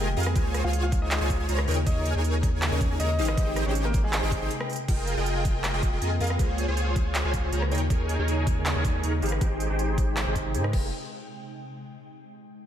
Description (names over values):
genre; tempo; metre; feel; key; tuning
future bass; 159 BPM; 4/4; half-time; F minor; A4 = 445 Hz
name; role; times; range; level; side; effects
warm grand piano; melody; 0.0-4.8 s; Ab3 to Ab5; -34 LUFS; left 1 dB; vintage 12-bit sampler grit, sidechain pumping, ping-pong delay
ethereal airy pad; sustained chords; 0.0-10.9 s; C3 to G5; -36 LUFS; equal; ensemble chorus, built-in reverb, sidechain pumping
supersaw chords; riff; 0.0-10.9 s; Eb4 to Bb5; -30 LUFS; equal; analog chorus, sidechain pumping, low-pass filter, ping-pong delay
saturated sub bass; bass; 0.0-10.9 s; F1 to Ab2; -27 LUFS; equal; sidechain pumping
big-room dance drum kit; drums; 0.2-10.8 s; crash cymbal, handclaps, hi-hat, rim click; -33 LUFS; right 1 dB; overdrive
electronic kick drum; drums; 0.4-10.8 s; none; -26 LUFS; equal; none
room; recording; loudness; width
light reverb, digital ambience; none; -23 LUFS; side -10 dB against mid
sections
0.0-4.9 A section; 4.9-10.9 B section; 10.9-12.4 C section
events
drop 0.0-4.9; break 4.5-4.9; filter sweep on supersaw synth 4.9-10.9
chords
0.4 Dbmaj7; 1.7 Eb7sus4; 3.2 Abmaj7; 4.9 Fm11; 6.4 Dbmaj7; 7.7 Eb7sus4; 9.2 Abmaj7; 10.7 Fm11; 10.9 N.C.